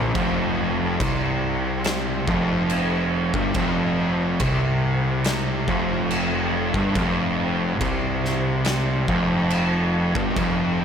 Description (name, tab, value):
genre	stoner and doom metal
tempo	70 BPM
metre	4/4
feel	straight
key	unclear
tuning	A4 = 439 Hz
part	fuzz guitar	riff	0.0-10.8 s	F2 to C3	-22 LUFS	equal	distortion
part	fuzz picked electric bass	bass	0.0-10.8 s	F1 to C2	-26 LUFS	equal	overdrive
part	oversized low-tuned drum kit	drums	0.2-10.6 s	crash cymbal, kick drum, snare drum	-27 LUFS	equal	none
room	light reverb, small room ambience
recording	none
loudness	-20 LUFS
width	side -7 dB against mid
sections	0.0-10.8 A section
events	none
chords	0.0 F5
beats	| 0.15 1.00 1.85 2.70 | 3.55 4.41 5.26 6.11 | 6.96 7.81 8.66 9.51 | 10.37